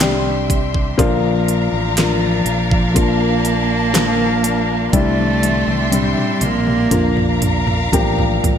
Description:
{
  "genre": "pop ballad",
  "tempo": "61 BPM",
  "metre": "4/4",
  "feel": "straight",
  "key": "Bb lydian",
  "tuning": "A4 = 440 Hz",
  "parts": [
    { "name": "dark upright piano", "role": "accompaniment", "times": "0.0-8.6 s", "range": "C3 to G4", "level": "-20 LUFS", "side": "left 4 dB", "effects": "none" },
    { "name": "warm studio string section", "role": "sustained chords", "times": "0.0-8.6 s", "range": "D4 to C6", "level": "-23 LUFS", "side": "left 1 dB", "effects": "none" },
    { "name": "fingered electric bass", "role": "bass", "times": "0.0-8.6 s", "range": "A1 to C2", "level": "-21 LUFS", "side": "right 1 dB", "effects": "none" },
    { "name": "pop drum kit", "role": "drums", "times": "0.0-8.6 s", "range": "hi-hat, kick drum, snare drum, toms", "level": "-20 LUFS", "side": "right 1 dB", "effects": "gated reverb" },
    { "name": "warm cello", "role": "melody", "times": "2.0-7.4 s", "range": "F3 to Bb3", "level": "-19 LUFS", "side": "right 3 dB", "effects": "none" }
  ],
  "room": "light reverb, small room ambience",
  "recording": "bright 1980s-style digital production",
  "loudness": "-14 LUFS",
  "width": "side -8 dB against mid",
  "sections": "0.0-8.6 A section",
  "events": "drum fill 4.9-8.6",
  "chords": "0.0 Cadd9; 1.0 Bb; 4.9 Cadd9; 6.9 Bb"
}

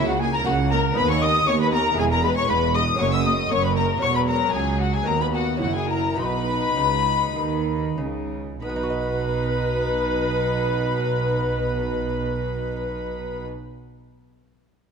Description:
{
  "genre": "classical, baroque-style concerto movement with solo episodes",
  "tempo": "93-119 BPM",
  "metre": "4/4",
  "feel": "straight",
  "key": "B major",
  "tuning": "A4 = 439 Hz",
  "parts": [
    { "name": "mellow alto recorder", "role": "melody", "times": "0.0-13.4 s", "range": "B4 to E6", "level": "-26 LUFS", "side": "left 1 dB", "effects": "none" },
    { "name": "warm chamber violin section", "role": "melody", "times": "0.0-13.4 s", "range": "F#5 to E6", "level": "-29 LUFS", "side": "left 4 dB", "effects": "none" },
    { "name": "warm studio violin section", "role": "second line", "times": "0.0-13.4 s", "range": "F#4 to E5", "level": "-28 LUFS", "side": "left 5 dB", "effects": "none" },
    { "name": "dark chamber viola section", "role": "accompaniment", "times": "0.0-13.4 s", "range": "F#3 to E4", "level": "-31 LUFS", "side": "left 1 dB", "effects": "none" },
    { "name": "lute", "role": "accompaniment", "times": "0.0-13.7 s", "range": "D#2 to D#5", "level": "-34 LUFS", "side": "equal", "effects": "none" },
    { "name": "dark chamber cello section", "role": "bass", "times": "0.0-13.4 s", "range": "C#2 to D#3", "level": "-28 LUFS", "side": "right 3 dB", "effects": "none" },
    { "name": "rich chamber double bass section", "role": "bass", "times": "0.0-13.4 s", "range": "E1 to D#2", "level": "-27 LUFS", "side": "right 4 dB", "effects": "none" }
  ],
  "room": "moderate scoring stage reverb, RT60 1.9 s",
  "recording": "none",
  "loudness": "-20 LUFS",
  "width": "side -6 dB against mid",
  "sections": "0.0-8.6 A section; 8.6-13.7 B section",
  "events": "slowing down 3.0-8.6",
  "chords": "0.0 F#9/C#; 1.0 B/D#; 2.0 E; 3.0 F#; 4.0 F#7/E; 5.1 B/D#; 5.6 F#7; 6.2 B"
}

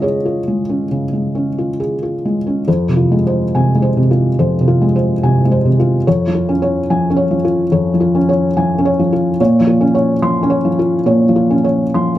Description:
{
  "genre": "neoclassical minimalist piano",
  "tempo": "67-73 BPM",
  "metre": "4/4",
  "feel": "rubato",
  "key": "unclear",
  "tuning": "A4 = 439 Hz",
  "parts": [
    { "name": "felt-muted upright piano", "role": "solo", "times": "0.0-12.2 s", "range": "F2 to C6", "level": "-12 LUFS", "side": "equal", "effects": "none" }
  ],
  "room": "light reverb",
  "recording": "none",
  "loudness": "-12 LUFS",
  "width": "side -13 dB against mid",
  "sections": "0.0-2.7 A section; 2.7-12.2 B section",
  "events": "none",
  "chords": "0.0 Db; 2.7 Fm; 6.1 Db/F; 9.4 Bbmadd9"
}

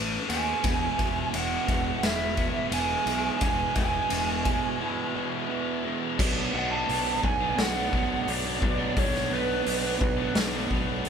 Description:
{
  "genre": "quiet-loud alternative rock",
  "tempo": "86 BPM",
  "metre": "4/4",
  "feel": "straight",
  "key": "unclear",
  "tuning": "A4 = 442 Hz",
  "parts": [
    { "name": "lead guitar through a small cranked amp", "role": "melody", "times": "0.0-10.3 s", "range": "B4 to A5", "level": "-30 LUFS", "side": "right 4 dB", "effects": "overdrive" },
    { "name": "electric guitar through a small old amp", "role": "arpeggios", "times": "0.0-6.2 s", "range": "E2 to E4", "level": "-38 LUFS", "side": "right 2 dB", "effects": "none" },
    { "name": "scooped high-gain guitar", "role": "riff", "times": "0.0-11.1 s", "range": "E2 to D4", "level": "-32 LUFS", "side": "left 8 dB", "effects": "distortion" },
    { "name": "fuzz fingered electric bass", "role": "bass", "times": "0.0-11.1 s", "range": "E1 to D#2", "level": "-33 LUFS", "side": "left 1 dB", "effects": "overdrive" },
    { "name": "raw garage drum kit", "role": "drums", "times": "0.3-11.1 s", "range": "crash cymbal, hi-hat, kick drum, ride cymbal, snare drum", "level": "-29 LUFS", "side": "left 1 dB", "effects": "none" },
    { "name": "fuzz guitar", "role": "riff", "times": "0.6-11.1 s", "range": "E2 to D4", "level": "-33 LUFS", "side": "right 7 dB", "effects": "distortion" }
  ],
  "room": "light reverb",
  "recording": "band playing live in one room",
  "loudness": "-24 LUFS",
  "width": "side -7 dB against mid",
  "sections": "0.0-6.2 A section; 6.2-11.1 B section",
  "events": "break 4.8-6.2",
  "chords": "0.0 Aadd9; 0.6 E; 6.2 Bm"
}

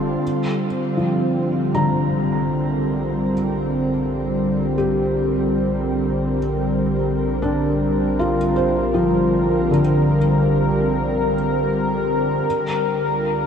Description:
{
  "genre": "ambient",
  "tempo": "78 BPM",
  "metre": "4/4",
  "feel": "straight",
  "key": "unclear",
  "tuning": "A4 = 438 Hz",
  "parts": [
    { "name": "warm analog pad", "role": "sustained chords", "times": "0.0-13.5 s", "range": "D3 to Bb4", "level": "-20 LUFS", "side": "equal", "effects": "chorus, shimmer reverb" },
    { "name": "felt-muted upright piano", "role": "arpeggios", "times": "0.0-12.5 s", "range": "D3 to Bb5", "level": "-22 LUFS", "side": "left 1 dB", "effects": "tape echo, shimmer reverb" },
    { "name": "warm sub bass", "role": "bass", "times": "0.0-13.5 s", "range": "F1 to C2", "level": "-31 LUFS", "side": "equal", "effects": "none" },
    { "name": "analog drone", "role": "drone", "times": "6.9-13.5 s", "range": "G3 to G4", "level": "-34 LUFS", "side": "equal", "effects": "none" }
  ],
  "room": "wet cathedral reverb, RT60 7.2 s",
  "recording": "in a vast, echoing space",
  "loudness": "-18 LUFS",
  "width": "side -7 dB against mid",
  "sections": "0.2-13.5 A section",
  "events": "fade-in on sub bass 0.2-13.5",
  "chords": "0.2 Bb69; 12.5 C9sus4"
}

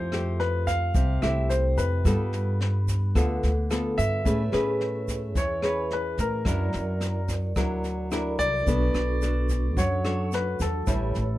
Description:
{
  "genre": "bossa nova",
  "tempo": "109 BPM",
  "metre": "4/4",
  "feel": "straight",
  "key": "A major",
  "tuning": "A4 = 440 Hz",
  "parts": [
    { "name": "warm grand piano", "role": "melody", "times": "0.0-11.4 s", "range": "A4 to F5", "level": "-30 LUFS", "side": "left 1 dB", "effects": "none" },
    { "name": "nylon-string guitar", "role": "accompaniment", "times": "0.0-11.4 s", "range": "A2 to C#5", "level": "-29 LUFS", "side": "left 1 dB", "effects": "none" },
    { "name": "upright bass", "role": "bass", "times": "0.0-11.4 s", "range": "A1 to A2", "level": "-27 LUFS", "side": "equal", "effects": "none" },
    { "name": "jazz brush drum kit", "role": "drums", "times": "0.1-11.2 s", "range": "kick drum, rim click, snare drum", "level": "-31 LUFS", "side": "equal", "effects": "none" },
    { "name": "tube shaker", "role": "percussion", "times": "0.1-11.4 s", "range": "none", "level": "-44 LUFS", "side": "right 8 dB", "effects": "none" },
    { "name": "vibraphone with soft mallets", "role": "accompaniment", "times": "4.2-11.4 s", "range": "D4 to C#6", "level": "-36 LUFS", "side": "right 5 dB", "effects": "none" }
  ],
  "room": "little or no reverb",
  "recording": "dark, warm production",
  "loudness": "-23 LUFS",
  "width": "side -15 dB against mid",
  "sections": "0.0-4.3 A section; 4.3-11.4 B section",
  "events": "none",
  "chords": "0.0 Fmaj9; 2.1 G9; 4.3 Amaj9; 6.5 F#7alt; 8.7 Bm9; 10.9 A7"
}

